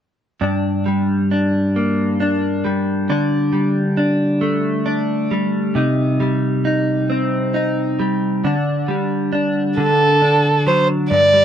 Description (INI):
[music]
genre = six-eight pop ballad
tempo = 45 BPM (dotted quarters)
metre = 6/8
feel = straight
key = G minor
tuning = A4 = 439 Hz
[part]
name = direct-recorded clean electric guitar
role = accompaniment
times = 0.4-11.4 s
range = G2 to Eb4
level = -16 LUFS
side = equal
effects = double-tracked left and right
[part]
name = warm violin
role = melody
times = 9.8-11.4 s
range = A4 to D5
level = -13 LUFS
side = right 1 dB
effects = none
[sound]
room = light reverb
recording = dry, close 1970s-style studio recording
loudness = -16 LUFS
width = side -9 dB against mid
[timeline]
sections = 0.4-11.1 A section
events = none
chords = 0.4 Gm; 3.1 Dsus4; 5.8 Cm; 8.4 Dsus4; 9.8 D